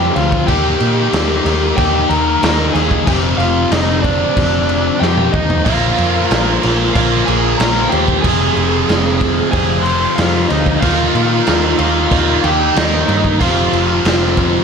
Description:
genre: quiet-loud alternative rock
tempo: 93 BPM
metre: 4/4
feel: straight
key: F dorian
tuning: A4 = 437 Hz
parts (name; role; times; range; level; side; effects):
- lead guitar through a small cranked amp; melody; 0.0-14.6 s; D4 to C6; -18 LUFS; equal; overdrive
- high-gain distorted guitar; riff; 0.0-14.6 s; F2 to Eb4; -20 LUFS; right 1 dB; distortion
- thick fuzz guitar; riff; 0.0-14.6 s; F2 to Eb4; -21 LUFS; left 15 dB; distortion
- hollow-body short-scale picked electric bass; bass; 0.0-14.6 s; F1 to Bb2; -19 LUFS; equal; none
- raw garage drum kit; drums; 0.2-14.5 s; crash cymbal, kick drum, snare drum, toms; -18 LUFS; equal; none
- overdriven electric guitar; riff; 5.7-14.6 s; F2 to Eb4; -20 LUFS; right 17 dB; phaser
room: light reverb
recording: none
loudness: -12 LUFS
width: side -6 dB against mid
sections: 0.0-14.6 A section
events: drum fill 5.0-5.7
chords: 0.5 Eb; 3.1 Fsus2; 5.7 Bb5; 8.2 Fm; 10.8 Eb; 13.4 F5

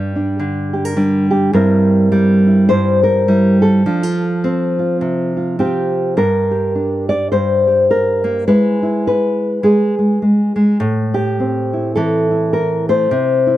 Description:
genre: folk, solo fingerstyle acoustic guitar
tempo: 104 BPM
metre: 4/4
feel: swing 59% on 8ths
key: G dorian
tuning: A4 = 440 Hz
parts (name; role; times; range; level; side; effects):
- nylon-string guitar; solo; 0.0-13.6 s; G2 to D5; -13 LUFS; equal; none
room: little or no reverb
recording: dry, close 1970s-style studio recording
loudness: -13 LUFS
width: side -14 dB against mid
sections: 0.0-6.2 A section; 6.2-13.6 B section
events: none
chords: 0.0 Gm; 1.5 C/G; 3.9 F; 6.2 Gm; 8.5 E/G#; 10.8 Am

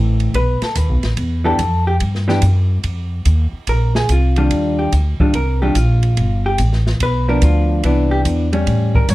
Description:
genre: jazz, small-group swing and bop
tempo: 144 BPM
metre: 4/4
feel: swing 66% on 8ths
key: C major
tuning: A4 = 441 Hz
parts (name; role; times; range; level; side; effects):
- vintage hollow-body jazz guitar; accompaniment; 0.0-9.1 s; Eb3 to C#5; -19 LUFS; equal; none
- upright bass; bass; 0.0-9.1 s; G1 to A2; -15 LUFS; equal; none
- open jazz drum kit; drums; 0.2-9.1 s; hi-hat, kick drum, ride cymbal, snare drum; -22 LUFS; equal; none
room: light reverb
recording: dark, warm production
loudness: -14 LUFS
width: side -17 dB against mid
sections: 0.0-9.1 A section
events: none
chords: 0.3 B7; 1.2 Em7; 2.8 Ebsus2; 3.7 Bb69; 6.2 G7; 7.8 Cmaj9

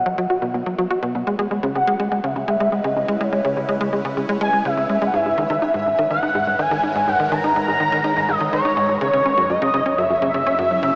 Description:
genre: ambient, sequencer-driven space music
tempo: 124 BPM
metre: 4/4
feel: straight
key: unclear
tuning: A4 = 440 Hz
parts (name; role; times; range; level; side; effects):
- expressive synth lead; melody; 0.0-11.0 s; C#5 to A#5; -22 LUFS; equal; ensemble chorus, shimmer reverb, tape echo
- evolving wavetable pad; sustained chords; 0.0-11.0 s; B2 to B4; -32 LUFS; equal; phaser, built-in reverb, shimmer reverb
- tight sequencer bass; riff; 0.0-10.9 s; F#2 to F#4; -25 LUFS; equal; analog chorus, shimmer reverb, tape echo
- analog drone; bass; 0.0-11.0 s; F#1 to C#2; -43 LUFS; equal; chorus
- pulsing gated texture; texture; 0.6-11.0 s; C#5; -38 LUFS; equal; none
room: wet huge ambient reverb, RT60 7.4 s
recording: small speaker sound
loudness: -20 LUFS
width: mono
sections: 0.0-11.0 A section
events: fade-in on ambient pad 0.0-11.0; fade-in on synth drone 0.0-11.0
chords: 0.0 B; 1.3 C#m7; 5.1 G#madd9; 9.0 F#7sus4

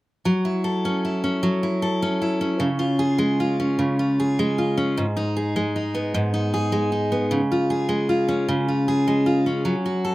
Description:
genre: pop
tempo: 51 BPM (dotted quarters)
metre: 6/8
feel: straight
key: F# minor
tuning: A4 = 440 Hz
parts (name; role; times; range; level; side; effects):
- picked steel-string acoustic guitar; solo; 0.3-10.1 s; G#2 to A4; -20 LUFS; equal; none
room: little or no reverb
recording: recorded outdoors, with no room sound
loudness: -20 LUFS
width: side -18 dB against mid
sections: 0.2-10.1 A section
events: none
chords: 0.2 F#m7; 2.6 C#; 5.0 G#m; 7.3 C#

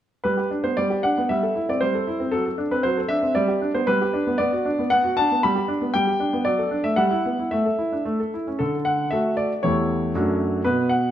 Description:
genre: classical-period piano sonatina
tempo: 116 BPM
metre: 2/4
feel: straight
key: G major, D major from 4.4 s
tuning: A4 = 440 Hz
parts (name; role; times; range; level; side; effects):
- warm concert grand piano; solo; 0.2-11.1 s; E2 to B5; -20 LUFS; equal; none
room: wet recital hall reverb, RT60 1.6 s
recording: none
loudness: -20 LUFS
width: side -11 dB against mid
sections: 0.3-8.6 A section; 8.6-11.1 B section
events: none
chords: 0.3 G; 1.3 Am7/G; 2.3 D7/F#; 3.4 G; 4.4 Bm; 5.4 G; 6.4 D/F#; 7.0 Em/G; 7.5 Asus4; 8.0 A; 8.6 D; 9.6 A7/E; 10.1 D/F#

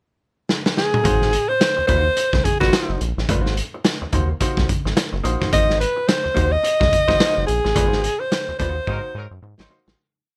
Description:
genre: funk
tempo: 107 BPM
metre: 4/4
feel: swing 60% on 16ths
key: Ab mixolydian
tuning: A4 = 441 Hz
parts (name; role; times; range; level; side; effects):
- raw garage drum kit; drums; 0.5-10.0 s; hi-hat, kick drum, snare drum, toms; -23 LUFS; equal; none
- warm alto saxophone; melody; 0.8-9.4 s; Gb4 to Eb5; -22 LUFS; equal; none
- vintage hollow-body jazz guitar; accompaniment; 1.0-10.0 s; Bb3 to C5; -30 LUFS; equal; none
- round analog bass; bass; 1.0-10.0 s; Gb1 to Ab2; -26 LUFS; equal; none
- warm horn section; second line; 8.9-9.8 s; Gb3 to C5; -39 LUFS; equal; none
room: light reverb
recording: none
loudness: -19 LUFS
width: mono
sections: 0.0-1.0 pickup bar; 1.0-10.0 groove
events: drum fill 0.5-1.0, 8.9-10.0; fade-out 7.8-10.0; band accent 7.8-10.0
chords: 0.0 N.C.; 1.0 Ab9

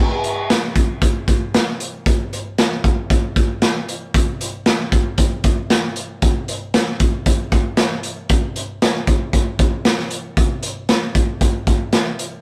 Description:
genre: rock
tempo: 115 BPM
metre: 4/4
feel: straight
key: none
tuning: none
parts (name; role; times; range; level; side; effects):
- raw garage drum kit; drums; 0.2-12.3 s; hi-hat, kick drum, snare drum; -19 LUFS; equal; none
room: light reverb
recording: rough rehearsal-room recording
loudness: -19 LUFS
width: mono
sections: 0.0-12.4 A section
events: none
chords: none

